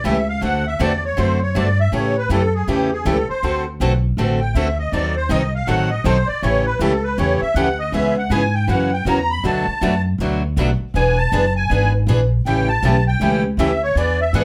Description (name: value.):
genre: acoustic string swing (jazz manouche).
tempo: 160 BPM.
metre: 4/4.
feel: swing 63% on 8ths.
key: A mixolydian.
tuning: A4 = 442 Hz.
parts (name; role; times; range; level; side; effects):
musette accordion; second line; 0.0-14.4 s; G4 to B5; -24 LUFS; equal; none.
picked steel-string acoustic guitar; accompaniment; 0.0-14.4 s; B2 to A4; -24 LUFS; equal; none.
picked steel-string acoustic guitar; accompaniment; 0.0-14.4 s; B2 to B4; -29 LUFS; equal; none.
upright bass; bass; 0.0-14.4 s; E1 to A2; -22 LUFS; equal; none.
room: moderate studio reverb, RT60 0.5 s.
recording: none.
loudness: -18 LUFS.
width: mono.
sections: 0.0-14.4 A section.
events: accordion solo 0.0-14.4.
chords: 0.4 D7; 1.9 A7; 3.4 D7; 4.9 D#dim7; 6.4 A7; 7.9 C#m7; 8.7 F#7; 9.4 Bm7; 10.9 E7; 12.5 A7.